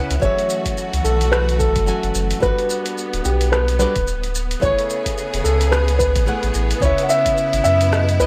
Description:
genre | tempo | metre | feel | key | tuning
sunset chillout | 109 BPM | 4/4 | swing 57% on 16ths | F# minor | A4 = 440 Hz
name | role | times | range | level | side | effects
dark grand piano | melody | 0.0-8.3 s | G4 to F#5 | -22 LUFS | equal | analog delay
flamenco guitar | accompaniment | 0.0-8.3 s | C#3 to G#5 | -28 LUFS | equal | analog delay
bright studio string section | sustained chords | 0.0-8.3 s | C#3 to G#4 | -30 LUFS | equal | none
warm sub bass | bass | 0.1-8.3 s | D1 to F#2 | -22 LUFS | equal | none
deep house drum kit | drums | 0.1-8.3 s | hi-hat, rim click, shaker | -29 LUFS | equal | none
electronic kick drum | drums | 0.2-7.4 s | none | -26 LUFS | equal | none
room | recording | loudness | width
digital ambience | dry, gritty hardware recording | -18 LUFS | mono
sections
0.0-8.3 A section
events
none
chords
0.2 F#m7; 2.4 Gmaj7; 4.6 Amaj9; 6.8 C#m9

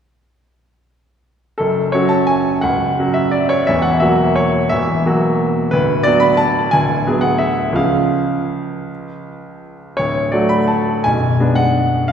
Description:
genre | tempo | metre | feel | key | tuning
classical, piano waltz | 159-184 BPM | 3/4 | rubato | F# minor | A4 = 440 Hz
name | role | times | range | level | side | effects
bright grand piano | solo | 1.6-12.1 s | B0 to B5 | -14 LUFS | equal | none
room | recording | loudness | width
wet concert hall reverb, RT60 1.9 s | heard from further back in the room | -13 LUFS | side -8 dB against mid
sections
1.6-12.1 A section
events
none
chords
1.6 F#m; 3.7 F#7/E; 5.7 Bm/D; 6.7 G#m7b5/D; 7.8 C#; 10.0 D; 11.1 G#dim/B

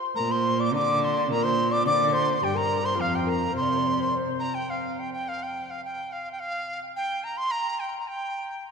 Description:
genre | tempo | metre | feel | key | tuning
chinese traditional, Chinese chamber ensemble | 107 BPM | 2/4 | rubato | C shang mode | A4 = 440 Hz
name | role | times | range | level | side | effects
mellow dizi | melody | 0.2-8.7 s | F5 to D6 | -26 LUFS | right 1 dB | none
bright reedy xiao | second line | 0.2-4.4 s | F4 to D5 | -29 LUFS | left 4 dB | none
rich cello | second line | 0.2-4.4 s | F2 to D3 | -28 LUFS | right 2 dB | none
room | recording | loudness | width
wet cathedral reverb, RT60 4.5 s | recorded in a church or concert hall | -24 LUFS | side -5 dB against mid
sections
0.0-4.7 A section; 4.7-8.7 B section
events
none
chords
none

